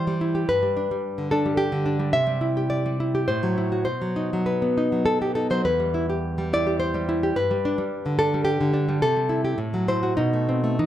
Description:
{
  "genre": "romantic piece for solo classical guitar",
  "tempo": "94-112 BPM",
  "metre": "3/4",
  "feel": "rubato",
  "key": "unclear",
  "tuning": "A4 = 440 Hz",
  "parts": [
    { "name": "nylon-string guitar", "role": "solo", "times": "0.0-10.9 s", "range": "E2 to E5", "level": "-21 LUFS", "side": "equal", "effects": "none" }
  ],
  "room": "moderate recital hall reverb, RT60 1.5 s",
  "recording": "none",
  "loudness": "-21 LUFS",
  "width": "side -12 dB against mid",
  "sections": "0.0-10.9 A section",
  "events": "none",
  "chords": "0.5 G; 2.1 C; 3.3 F#m7b5/A; 3.9 B; 5.7 Em; 7.4 G; 9.0 C; 9.6 F#m7b5/A; 10.2 B7b9"
}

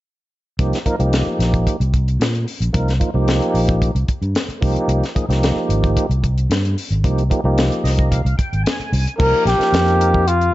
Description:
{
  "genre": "electric jazz fusion",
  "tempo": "112 BPM",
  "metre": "4/4",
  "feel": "straight",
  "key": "C minor",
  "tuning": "A4 = 438 Hz",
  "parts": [
    { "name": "tonewheel organ", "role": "accompaniment", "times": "0.6-10.3 s", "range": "F3 to Ab5", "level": "-22 LUFS", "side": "right 1 dB", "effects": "overdrive, chorus vibrato, slow rotary speaker" },
    { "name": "fingered electric bass", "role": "bass", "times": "0.6-10.5 s", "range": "Ab1 to Bb2", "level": "-18 LUFS", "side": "equal", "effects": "none" },
    { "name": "tight funk drum kit", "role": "drums", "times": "0.6-10.5 s", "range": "crash cymbal, hi-hat, kick drum, snare drum", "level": "-21 LUFS", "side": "equal", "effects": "none" },
    { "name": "breathy trumpet", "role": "melody", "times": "9.2-10.5 s", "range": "F4 to Bb4", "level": "-15 LUFS", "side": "left 1 dB", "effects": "slapback echo" }
  ],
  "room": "light reverb, studio ambience",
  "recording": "dark, warm production, nothing above 7.7 kHz",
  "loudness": "-15 LUFS",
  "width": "side -16 dB against mid",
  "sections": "0.6-9.2 A section; 9.2-10.5 B section",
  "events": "tonewheel organ fill 7.6-9.2",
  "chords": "0.6 Cm7; 4.6 Abmaj13; 9.2 Cm7 (rootless)"
}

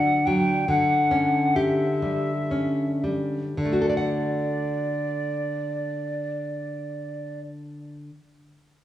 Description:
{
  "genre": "romantic duo for flute and classical guitar",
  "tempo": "53-74 BPM",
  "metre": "3/4",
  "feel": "rubato",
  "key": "D major",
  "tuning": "A4 = 440 Hz",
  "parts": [
    { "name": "silver concert flute", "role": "melody", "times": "0.0-7.4 s", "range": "D5 to G5", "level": "-26 LUFS", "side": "equal", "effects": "none" },
    { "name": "nylon-string guitar", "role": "accompaniment", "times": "0.0-8.3 s", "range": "D3 to F#5", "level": "-25 LUFS", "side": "equal", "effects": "none" }
  ],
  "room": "moderate recital hall reverb, RT60 1.8 s",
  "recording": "small room reverb",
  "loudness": "-22 LUFS",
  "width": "side -12 dB against mid",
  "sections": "0.0-3.6 A section; 3.6-6.6 B section",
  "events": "slowing down 0.0-3.6",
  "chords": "0.0 D; 0.7 Em13/D; 3.6 D"
}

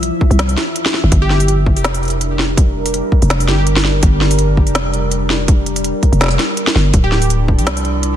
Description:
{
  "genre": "half-time drum and bass",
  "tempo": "165 BPM",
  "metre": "4/4",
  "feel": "swing 55% on 16ths, half-time",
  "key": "unclear",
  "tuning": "A4 = 439 Hz",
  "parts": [
    { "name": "deep dark ambient pad", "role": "sustained chords", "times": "0.0-8.2 s", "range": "F3 to E5", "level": "-21 LUFS", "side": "equal", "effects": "chorus, built-in reverb, sidechain pumping" },
    { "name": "growling 808-style bass", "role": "bass", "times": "0.0-8.2 s", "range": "D1 to C2", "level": "-15 LUFS", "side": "equal", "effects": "none" },
    { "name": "organic electronic drum kit", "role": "drums", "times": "0.0-8.1 s", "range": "hi-hat, snare drum", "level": "-18 LUFS", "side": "equal", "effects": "soft clipping on snare" },
    { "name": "electronic kick drum", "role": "drums", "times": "0.2-7.6 s", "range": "none", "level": "-12 LUFS", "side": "equal", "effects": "none" },
    { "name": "plucky unison lead", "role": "melody", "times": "1.2-3.6, 7.0-7.4 s", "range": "G4", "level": "-24 LUFS", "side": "right 1 dB", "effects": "tape echo" },
    { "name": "metallic inharmonic drone", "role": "texture", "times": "7.2-8.2 s", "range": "D4", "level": "-25 LUFS", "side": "right 4 dB", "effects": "chorus, built-in reverb" }
  ],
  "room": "light reverb",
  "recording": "dense, heavily limited modern master",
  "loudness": "-12 LUFS",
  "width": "side -10 dB against mid",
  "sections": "0.0-8.2 A section",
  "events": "none",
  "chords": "0.0 Dmadd9 (rootless); 1.1 Gm; 6.9 Dmadd9"
}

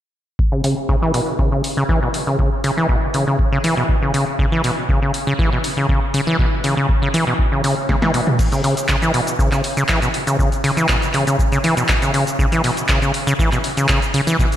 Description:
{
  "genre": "acid house",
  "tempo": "120 BPM",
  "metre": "4/4",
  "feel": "straight",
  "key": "C# minor",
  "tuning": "A4 = 439 Hz",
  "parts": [
    { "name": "electronic kick drum", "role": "drums", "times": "0.4-14.5 s", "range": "none", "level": "-19 LUFS", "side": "equal", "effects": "none" },
    { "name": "acid bass, saw", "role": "riff", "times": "0.5-14.5 s", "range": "B2 to E3", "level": "-18 LUFS", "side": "equal", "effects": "tube saturation, sidechain pumping, analog delay" },
    { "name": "punchy analog drum machine", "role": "drums", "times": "0.6-14.6 s", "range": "crash cymbal, handclaps, hi-hat, shaker, snare drum, toms", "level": "-23 LUFS", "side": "equal", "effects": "none" }
  ],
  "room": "wet lush hall reverb, RT60 1.9 s, digital ambience",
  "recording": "dreamy mix soaked in reverb",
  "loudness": "-15 LUFS",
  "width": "side -11 dB against mid",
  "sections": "0.4-8.4 A section; 8.4-14.6 B section",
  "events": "filter sweep on acid bass 0.4-8.4, 8.4-14.6; drum fill 7.9-8.4",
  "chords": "none"
}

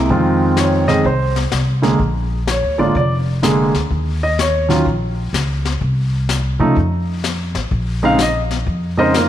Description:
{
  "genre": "jazz piano trio",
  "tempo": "126 BPM",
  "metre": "4/4",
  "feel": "swing 66% on 8ths",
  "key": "Bb minor",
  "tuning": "A4 = 439 Hz",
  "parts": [
    { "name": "warm concert grand piano", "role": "melody", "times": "0.0-9.3 s", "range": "Db3 to F5", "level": "-16 LUFS", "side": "right 1 dB", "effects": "none" },
    { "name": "upright bass", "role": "bass", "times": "0.0-9.3 s", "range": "F1 to C3", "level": "-19 LUFS", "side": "equal", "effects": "none" },
    { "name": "jazz brush drum kit", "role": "drums", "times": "0.1-9.3 s", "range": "brushed snare drum, hi-hat, kick drum, snare drum", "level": "-24 LUFS", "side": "left 5 dB", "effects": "none" }
  ],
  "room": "moderate echo chamber reverb, RT60 1.7 s, small room ambience",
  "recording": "1960s-style stereo",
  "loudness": "-14 LUFS",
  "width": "side -11 dB against mid",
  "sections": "0.0-9.3 A section",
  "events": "none",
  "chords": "0.1 Fm7; 2.0 Bb7; 3.9 Eb7(no3); 5.8 N.C.; 6.8 F; 7.7 Bbsus4"
}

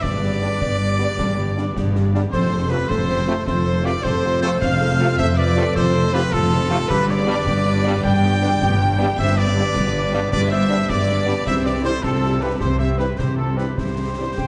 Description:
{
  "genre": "cinematic, heroic adventure film score",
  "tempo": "105 BPM (dotted quarters)",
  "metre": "12/8",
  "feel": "straight",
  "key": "unclear",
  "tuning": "A4 = 441 Hz",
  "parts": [
    { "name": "warm studio violin section", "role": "melody", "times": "0.0-14.5 s", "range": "A4 to G5", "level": "-32 LUFS", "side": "equal", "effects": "none" },
    { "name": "clear clarinet", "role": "second line", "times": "0.0-14.5 s", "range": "F4 to D5", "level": "-32 LUFS", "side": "equal", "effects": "none" },
    { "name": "warm oboe", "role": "second line", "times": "0.0-14.5 s", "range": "A4 to G5", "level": "-32 LUFS", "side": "equal", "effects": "none" },
    { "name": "warm symphonic violin section", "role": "second line", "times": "0.0-14.5 s", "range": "A4 to G5", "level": "-33 LUFS", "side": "equal", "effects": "none" },
    { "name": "warm symphonic viola section", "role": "accompaniment", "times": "0.0-14.5 s", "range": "G3 to A4", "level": "-32 LUFS", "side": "equal", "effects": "none" },
    { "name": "bright trumpet", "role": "stabs", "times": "0.0-14.5 s", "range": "A4 to G5", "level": "-29 LUFS", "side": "equal", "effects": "none" },
    { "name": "dark symphonic cello section", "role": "bass", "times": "0.0-14.5 s", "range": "F2 to C3", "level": "-25 LUFS", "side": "equal", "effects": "none" },
    { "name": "warm symphonic double bass section", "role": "bass", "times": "0.0-14.5 s", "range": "F1 to C2", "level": "-26 LUFS", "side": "equal", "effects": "none" },
    { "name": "concert snare drum, concert bass drum and clash cymbals", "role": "drums", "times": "0.0-14.5 s", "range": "none", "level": "-30 LUFS", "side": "equal", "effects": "none" },
    { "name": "clear trombone section", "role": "sustained chords", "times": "0.4-14.2 s", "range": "G2 to A3", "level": "-35 LUFS", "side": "equal", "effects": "none" },
    { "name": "warm French horn section", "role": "sustained chords", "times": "0.4-14.3 s", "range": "B3 to F4", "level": "-33 LUFS", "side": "equal", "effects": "none" },
    { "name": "silver concert flute", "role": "second line", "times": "14.4-14.5 s", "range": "G5", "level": "-30 LUFS", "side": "equal", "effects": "none" }
  ],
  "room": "moderate scoring stage reverb, RT60 2.0 s",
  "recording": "nothing above 10.4 kHz",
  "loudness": "-19 LUFS",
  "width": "mono",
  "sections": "0.0-14.5 A section",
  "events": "none",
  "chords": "0.0 G; 2.3 F; 6.9 G; 11.5 C"
}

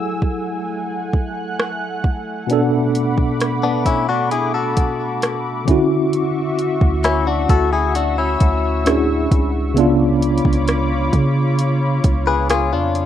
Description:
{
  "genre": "contemporary R&B",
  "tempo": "66 BPM",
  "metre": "4/4",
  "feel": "straight",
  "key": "F# minor",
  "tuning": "A4 = 437 Hz",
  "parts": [
    { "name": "tine electric piano", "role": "accompaniment", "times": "0.0-13.1 s", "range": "B2 to A4", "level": "-20 LUFS", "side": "right 1 dB", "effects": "overdrive, fast stereo tremolo" },
    { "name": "warm analog pad", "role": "sustained chords", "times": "0.0-13.1 s", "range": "A3 to F#6", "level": "-25 LUFS", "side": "equal", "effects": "chorus" },
    { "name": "smooth R&B drum kit", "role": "drums", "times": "0.2-13.1 s", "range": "hi-hat, kick drum, rim click", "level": "-18 LUFS", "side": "equal", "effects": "overdrive, vintage 12-bit sampler grit" },
    { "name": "direct-recorded clean electric guitar", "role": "arpeggios", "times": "3.6-13.1 s", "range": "B3 to B4", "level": "-20 LUFS", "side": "left 6 dB", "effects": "digital delay, plate reverb" },
    { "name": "long sustained 808-style bass", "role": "bass", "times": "6.8-13.1 s", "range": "C#2 to C#3", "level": "-20 LUFS", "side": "right 1 dB", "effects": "none" }
  ],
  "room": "moderate studio ambience, RT60 0.5 s",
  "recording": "rough home demo mix",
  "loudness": "-16 LUFS",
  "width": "side -10 dB against mid",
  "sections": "0.0-13.1 A section",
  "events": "none",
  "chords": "0.0 F#m9; 2.5 Bm7; 5.7 Dmaj9; 9.8 C#7b9"
}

